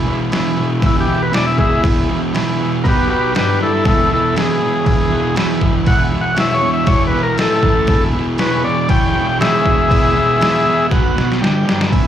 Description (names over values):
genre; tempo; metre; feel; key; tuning
garage rock duo or trio; 119 BPM; 4/4; straight; E mixolydian; A4 = 440 Hz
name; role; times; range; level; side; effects
overdriven combo organ; sustained chords; 0.0-12.1 s; B3 to G#5; -25 LUFS; right 2 dB; none
fuzz guitar; riff; 0.0-12.1 s; E2 to B3; -17 LUFS; right 1 dB; distortion
trip hop sampler-style drum kit; drums; 0.3-12.0 s; crash cymbal, kick drum, snare drum; -18 LUFS; equal; overdrive
overdriven combo organ; melody; 0.9-10.9 s; E4 to G5; -16 LUFS; left 1 dB; analog delay
room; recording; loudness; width
little or no reverb; live gig heard through the venue's PA, club reverb; -13 LUFS; side -10 dB against mid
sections
0.0-11.9 A section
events
transistor combo organ solo 0.0-11.9; drum fill 10.9-11.9; transistor combo organ fill 11.2-11.9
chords
0.0 E; 2.8 B5; 3.3 G5; 3.8 E; 7.4 A5; 7.9 E; 10.9 B5; 11.4 G5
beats
0.31 0.82 1.32 | 1.83 2.33 2.84 3.34 | 3.85 4.35 4.86 5.36 | 5.87 6.37 6.87 7.38 | 7.88 8.38 8.89 9.39 | 9.89 10.40 10.90 11.40 | 11.90